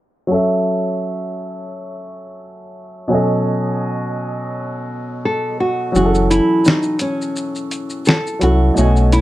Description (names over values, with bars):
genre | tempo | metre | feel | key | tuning
lo-fi hip hop | 85 BPM | 4/4 | swing 56% on 16ths | F# dorian | A4 = 439 Hz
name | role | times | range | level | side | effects
warm upright piano | accompaniment | 0.3-9.2 s | B2 to G#5 | -19 LUFS | equal | cassette tape
nylon-string guitar | melody | 5.3-9.2 s | C#4 to A4 | -18 LUFS | equal | plate reverb
sub bass with octave | bass | 5.9-9.2 s | F#1 to B#1 | -15 LUFS | equal | none
dusty soul sampler-style drum kit | drums | 6.0-9.2 s | hi-hat, shaker, snare drum | -18 LUFS | equal | none
room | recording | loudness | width
moderate studio reverb, RT60 0.5 s | low-pass filter | -15 LUFS | side -15 dB against mid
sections
0.3-5.9 A section; 5.9-9.2 B section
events
filter sweep 0.3-5.9; kick muted 5.9-9.2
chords
0.3 F#m7; 3.1 B13; 5.9 F#m7